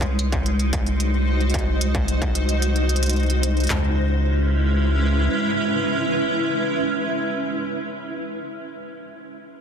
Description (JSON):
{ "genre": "IDM", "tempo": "111 BPM", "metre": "4/4", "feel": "straight", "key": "C# minor", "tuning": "A4 = 439 Hz", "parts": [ { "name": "granular cloud pad", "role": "sustained chords", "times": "0.0-8.4 s", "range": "G#3 to E5", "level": "-23 LUFS", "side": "right 1 dB", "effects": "built-in reverb, sidechain pumping" }, { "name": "rubbery square bass", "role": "bass", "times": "0.0-5.3 s", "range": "B#1 to C#2", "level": "-20 LUFS", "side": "equal", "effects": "none" }, { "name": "electronic hi-hat", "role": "drums", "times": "0.0-3.7 s", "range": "none", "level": "-30 LUFS", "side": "right 1 dB", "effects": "none" }, { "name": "industrial drum kit", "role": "drums", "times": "0.0-3.8 s", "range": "handclaps, kick drum, snare drum, toms", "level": "-25 LUFS", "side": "equal", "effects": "distortion" } ], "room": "light reverb", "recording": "dense, heavily limited modern master", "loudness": "-19 LUFS", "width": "side -7 dB against mid", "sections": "0.0-3.7 A section; 3.7-8.0 B section", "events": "none", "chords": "0.0 G#7/B#; 3.7 C#m7", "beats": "0.46 1.00 | 1.54 2.08 2.62 3.16 | 3.70 4.24 4.78 5.32 | 5.87 6.41 6.95 7.49" }